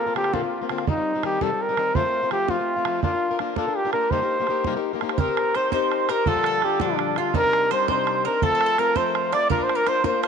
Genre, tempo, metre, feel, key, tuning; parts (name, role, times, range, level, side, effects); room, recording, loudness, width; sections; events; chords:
celtic folk, Celtic jig; 111 BPM (dotted quarters); 6/8; straight; C dorian; A4 = 440 Hz
dark trumpet; melody; 0.0-10.3 s; D4 to D5; -22 LUFS; right 1 dB
fingerpicked plugged-in swing-style acoustic guitar; accompaniment; 0.0-10.3 s; Bb2 to C5; -27 LUFS; left 12 dB
bodhran; percussion; 0.2-10.3 s; -28 LUFS; right 7 dB
mandolin; second line; 5.2-10.3 s; D4 to D5; -28 LUFS; right 10 dB; tape echo
moderate plate reverb, RT60 3.2 s; 1960s-style stereo with parts hard left and right; -20 LUFS; side -6 dB against mid
0.0-5.2 A section; 5.2-10.3 B section
0.0 Bbadd9; 0.9 Cm; 2.0 F; 3.0 Bb; 4.1 Cm7; 5.2 Cm; 6.3 Bb6; 7.3 Cmadd9; 8.4 F; 9.5 Bb